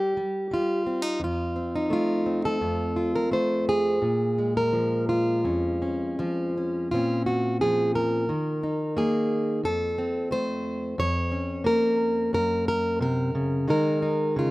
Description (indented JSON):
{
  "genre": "folk, solo fingerstyle acoustic guitar",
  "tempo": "87 BPM",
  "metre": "4/4",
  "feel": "rubato",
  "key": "Bb minor",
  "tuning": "A4 = 435 Hz",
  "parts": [
    { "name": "fingerpicked plugged-in steel-string acoustic guitar", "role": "solo", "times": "0.0-14.5 s", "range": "F2 to Db5", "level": "-23 LUFS", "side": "equal", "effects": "slapback echo" }
  ],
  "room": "little or no reverb",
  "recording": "recorded outdoors, with no room sound",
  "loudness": "-23 LUFS",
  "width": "side -19 dB against mid",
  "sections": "0.0-6.9 A section; 6.9-14.5 B section",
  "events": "none",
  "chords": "0.0 Eb/G; 1.2 F; 4.0 Bbm7; 6.9 Bbmadd9; 8.3 Eb5; 9.6 F; 11.0 Bbm/F; 12.3 Gb; 13.7 Ebsus4"
}